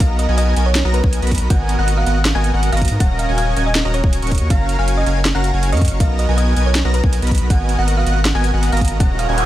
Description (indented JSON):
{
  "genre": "future bass",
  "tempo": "160 BPM",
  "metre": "4/4",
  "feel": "half-time",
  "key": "unclear",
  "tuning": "A4 = 438 Hz",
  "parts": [
    { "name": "thumb-piano-like synth pluck", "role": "melody", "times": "0.0-9.5 s", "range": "B4 to G#5", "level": "-25 LUFS", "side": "equal", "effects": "chorus, sidechain pumping, digital delay" },
    { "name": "airy dreamy lead", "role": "arpeggios", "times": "0.0-9.5 s", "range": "F#5 to C#6", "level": "-27 LUFS", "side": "equal", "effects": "chorus, vintage 12-bit sampler grit, sidechain pumping" },
    { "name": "dense compressed supersaw", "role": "riff", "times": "0.0-9.5 s", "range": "B3 to C#6", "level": "-23 LUFS", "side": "right 1 dB", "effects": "vintage 12-bit sampler grit, sidechain pumping" },
    { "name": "saturated sub bass", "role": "bass", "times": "0.0-9.5 s", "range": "D#1 to G#2", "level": "-17 LUFS", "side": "equal", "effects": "sidechain pumping" },
    { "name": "electronic kick drum", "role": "drums", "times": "0.0-9.1 s", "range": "none", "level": "-16 LUFS", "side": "equal", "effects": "none" },
    { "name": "trap drum kit", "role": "drums", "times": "0.0-9.5 s", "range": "hi-hat, snare drum", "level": "-23 LUFS", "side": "right 1 dB", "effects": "none" },
    { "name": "noise sweep", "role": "sound effects", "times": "9.1-9.5 s", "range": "none", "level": "-23 LUFS", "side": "right 4 dB", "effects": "none" }
  ],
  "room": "little or no reverb",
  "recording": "none",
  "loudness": "-14 LUFS",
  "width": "side -14 dB against mid",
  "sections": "0.0-9.5 A section",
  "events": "noise sweep 9.1-9.5",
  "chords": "0.0 Bmaj7; 1.5 G#m9; 3.0 D#m7; 4.5 F#maj7; 6.0 Bmaj7; 7.5 G#m9"
}